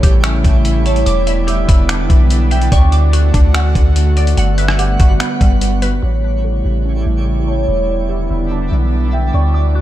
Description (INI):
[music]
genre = hip hop, atmospheric cloud-rap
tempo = 145 BPM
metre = 4/4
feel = half-time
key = unclear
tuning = A4 = 440 Hz
[part]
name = concert harp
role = melody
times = 0.0-9.8 s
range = C#5 to G5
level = -23 LUFS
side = right 1 dB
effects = low-pass filter, ping-pong delay
[part]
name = airy breathy pad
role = sustained chords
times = 0.0-9.8 s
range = C#3 to F#5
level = -21 LUFS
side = right 2 dB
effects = chorus, sidechain pumping, low-pass filter
[part]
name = glassy wavetable pluck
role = arpeggios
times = 0.0-9.8 s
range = D3 to D6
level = -26 LUFS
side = left 2 dB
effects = chorus, low-pass filter, ping-pong delay
[part]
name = long sustained 808-style bass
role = bass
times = 0.0-9.8 s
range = E1 to D2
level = -14 LUFS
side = equal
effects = none
[part]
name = trip hop sampler-style drum kit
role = drums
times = 0.0-5.9 s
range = finger snaps, hi-hat, kick drum, rim click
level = -14 LUFS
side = equal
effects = none
[part]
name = twinkling granular texture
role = texture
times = 0.0-9.8 s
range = G3 to C#5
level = -29 LUFS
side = right 1 dB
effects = built-in reverb
[sound]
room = little or no reverb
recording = none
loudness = -11 LUFS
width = side -14 dB against mid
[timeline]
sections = 0.0-6.0 A section; 6.0-9.8 B section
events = none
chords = 0.0 A7; 1.1 Em7; 2.7 Dmaj7; 4.4 Gmaj7; 6.0 A7; 7.7 Em7